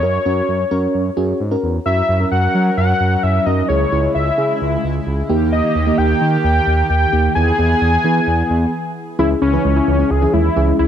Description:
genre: pop.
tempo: 131 BPM.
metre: 4/4.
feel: straight.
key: unclear.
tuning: A4 = 441 Hz.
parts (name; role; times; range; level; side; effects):
wide unison lead; melody; 0.0-10.9 s; C#4 to G#5; -18 LUFS; left 2 dB; slapback echo.
mellow FM electric piano; accompaniment; 0.0-10.9 s; A#3 to B4; -21 LUFS; right 2 dB; chorus, phaser.
smooth synth bass; bass; 0.0-10.9 s; C#2 to F#3; -18 LUFS; equal; none.
chorused pulse-width pad; sustained chords; 1.9-9.2 s; C#3 to A#4; -23 LUFS; equal; none.
warbly dusty pluck; arpeggios; 9.2-10.9 s; E3 to E4; -22 LUFS; right 2 dB; chorus, slapback echo.
room: light reverb, digital ambience.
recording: none.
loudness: -14 LUFS.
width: side -9 dB against mid.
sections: 0.0-1.9 A section; 1.9-9.2 B section; 9.2-10.9 C section.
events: break 8.7-9.2.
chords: 0.0 F#add9; 1.9 F#; 3.7 C#m; 5.3 D#; 7.4 E; 9.2 C#m.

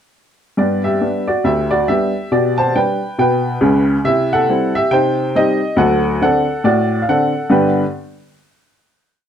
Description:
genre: jazz, stride piano.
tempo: 139 BPM.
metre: 4/4.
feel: swing 60% on 8ths.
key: G major.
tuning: A4 = 441 Hz.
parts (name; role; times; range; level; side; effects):
warm upright piano; solo; 0.6-7.8 s; C#2 to A5; -13 LUFS; equal; none.
room: moderate club reverb, RT60 0.8 s.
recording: dark, warm production.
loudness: -13 LUFS.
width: side -8 dB against mid.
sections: 0.6-7.5 A section; 7.5-9.2 final chord.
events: none.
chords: 0.6 G; 2.3 G/B; 4.0 C; 4.9 Cm; 5.8 D7; 7.5 G.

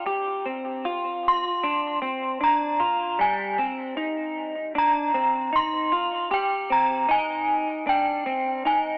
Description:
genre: dream pop.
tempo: 77 BPM.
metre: 4/4.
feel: straight.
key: unclear.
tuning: A4 = 441 Hz.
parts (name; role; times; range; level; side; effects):
synth chime; melody; 0.0-9.0 s; G5 to C6; -23 LUFS; equal; ensemble chorus, tape echo.
clean electric guitar; arpeggios; 0.0-9.0 s; G3 to G4; -27 LUFS; equal; analog chorus, tape echo.
room: wet studio ambience, RT60 0.5 s.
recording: transformer saturation, telephone sound.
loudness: -22 LUFS.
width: side -31 dB against mid.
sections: 0.0-9.0 A section.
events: none.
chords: 0.0 N.C.; 0.9 Bbadd9; 4.0 Cm11; 7.1 Fm9 (rootless).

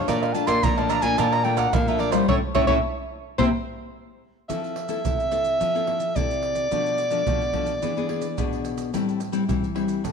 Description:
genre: samba and choro.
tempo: 108 BPM.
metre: 4/4.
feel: straight.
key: F major from 4.5 s.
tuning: A4 = 440 Hz.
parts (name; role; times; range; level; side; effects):
breathy soprano saxophone; melody; 0.0-8.7 s; C5 to C6; -25 LUFS; right 1 dB; none.
cavaquinho; accompaniment; 0.0-3.5 s; A4 to Bb5; -28 LUFS; right 8 dB; none.
nylon-string guitar; accompaniment; 0.0-10.1 s; A2 to A4; -26 LUFS; left 7 dB; none.
nylon-string guitar; bass; 0.1-3.5 s; A2 to C3; -27 LUFS; right 1 dB; none.
maracas, surdo, pandeiro, tamborim and agogo bells; percussion; 0.1-10.1 s; none; -28 LUFS; right 3 dB; none.
room: wet echo chamber reverb, RT60 1.5 s.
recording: 1960s-style stereo with parts hard left and right.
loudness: -21 LUFS.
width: side -6 dB against mid.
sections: 0.0-4.5 A section; 4.5-10.1 B section.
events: soprano saxophone solo 0.0-4.5; band accent 2.3-4.5.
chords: 0.1 Bbmaj7; 2.3 A; 3.4 C7; 4.5 Fmaj7; 6.7 Bm7b5; 7.8 E7; 8.9 Am7.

